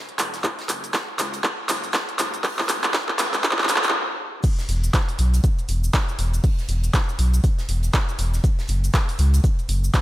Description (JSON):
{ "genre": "deep house", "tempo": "120 BPM", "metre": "4/4", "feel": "swing 59% on 16ths", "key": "unclear", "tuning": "A4 = 440 Hz", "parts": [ { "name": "deep house drum kit", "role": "drums", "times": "0.1-10.0 s", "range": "crash cymbal, handclaps, hi-hat, shaker", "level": "-23 LUFS", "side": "equal", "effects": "overdrive" }, { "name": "sub bass with octave", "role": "bass", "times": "0.2-9.9 s", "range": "E1 to C#2", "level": "-20 LUFS", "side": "equal", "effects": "sidechain pumping, high-pass filter" }, { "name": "huge arena drum kit", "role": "drums", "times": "0.2-10.0 s", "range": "hi-hat, shaker, snare drum", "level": "-38 LUFS", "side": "right 1 dB", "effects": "sidechain pumping on hats, high-pass filter on hats, high-pass filter on snare, sidechain pumping on perc, high-pass filter on perc, high-pass filter on room" }, { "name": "electronic kick drum", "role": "drums", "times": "0.4-10.0 s", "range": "none", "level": "-20 LUFS", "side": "equal", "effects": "overdrive, high-pass filter on kick" } ], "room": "moderate plate reverb, RT60 2.0 s", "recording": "dreamy mix soaked in reverb, high-pass filter", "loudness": "-19 LUFS", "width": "side -16 dB against mid", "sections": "0.0-4.4 A section; 4.4-10.0 B section", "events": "build-up 0.0-4.4; drum fill 0.0-3.9; stop 3.9-4.4; drop 4.4-10.0", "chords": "none", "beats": "| 0.44 0.94 1.44 1.94 | 2.44 2.94 3.44 3.94 | 4.44 4.94 5.44 5.94 | 6.44 6.94 7.44 7.94 | 8.44 8.94 9.44 9.94" }